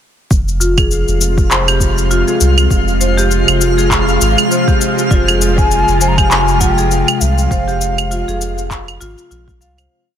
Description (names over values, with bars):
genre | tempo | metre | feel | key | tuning
organic downtempo | 100 BPM | 4/4 | swing 57% on 16ths | F minor | A4 = 444 Hz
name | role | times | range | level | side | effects
bowed-like drone | sustained chords | 0.7-9.9 s | C3 to F4 | -18 LUFS | equal | built-in reverb, sidechain pumping
warm sub bass | bass | 0.3-9.9 s | F1 to C2 | -16 LUFS | equal | sidechain pumping
electronic kick drum | drums | 0.3-9.6 s | none | -14 LUFS | equal | overdrive
electronic shaker, claves and handclaps | drums | 0.3-9.9 s | none | -17 LUFS | equal | overdrive
twinkling granular texture | texture | 1.0-9.9 s | F4 to F5 | -22 LUFS | left 1 dB | built-in reverb
marimba with medium hard mallets | arpeggios | 0.6-9.9 s | F4 to F5 | -20 LUFS | equal | low-pass filter, digital delay
breathy mellow ney | melody | 5.1-9.0 s | C5 to Bb5 | -18 LUFS | left 1 dB | ping-pong delay
room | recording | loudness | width
light reverb, digital ambience | dense, heavily limited modern master | -11 LUFS | side -9 dB against mid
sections
0.3-9.9 groove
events
filter sweep on marimba 0.3-9.9; fade-out 6.7-9.9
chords
0.3 Fm